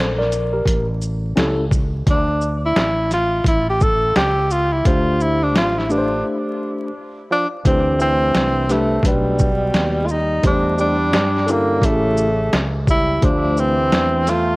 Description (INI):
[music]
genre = hip hop, jazz-hop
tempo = 86 BPM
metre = 4/4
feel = swing 61% on 16ths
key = D minor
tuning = A4 = 439 Hz
[part]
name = tine electric piano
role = accompaniment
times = 0.0-14.2 s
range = A3 to D5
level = -22 LUFS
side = left 1 dB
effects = medium stereo tremolo
[part]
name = fretless electric bass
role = bass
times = 0.0-14.6 s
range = A1 to G2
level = -22 LUFS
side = equal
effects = transformer saturation
[part]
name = boom bap sampler-style drum kit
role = drums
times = 0.2-14.5 s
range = hi-hat, kick drum, shaker, snare drum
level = -19 LUFS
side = equal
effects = none
[part]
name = breathy tenor saxophone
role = melody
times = 2.1-14.6 s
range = G3 to A4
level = -19 LUFS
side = equal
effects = tape echo
[part]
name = mellow trombone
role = second line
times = 7.3-14.6 s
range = B2 to A3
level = -25 LUFS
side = right 2 dB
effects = none
[sound]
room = light reverb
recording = worn, warbling old tape, cassette tape, vinyl crackle, warbly pitch drift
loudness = -15 LUFS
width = side -24 dB against mid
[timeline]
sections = 0.0-7.6 A section; 7.6-14.6 B section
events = tenor saxophone solo 0.0-7.6; break 6.3-7.6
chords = 0.0 Bbmaj9; 0.7 A7; 2.1 D5; 7.6 Dsus2; 9.0 B7alt; 10.4 C13/E; 11.8 A7; 13.2 Dm9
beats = 0.67 1.37 | 2.06 2.76 3.46 4.16 | 4.86 5.55 6.25 6.95 | 7.65 8.34 9.04 9.74 | 10.44 11.13 11.83 12.53 | 13.23 13.93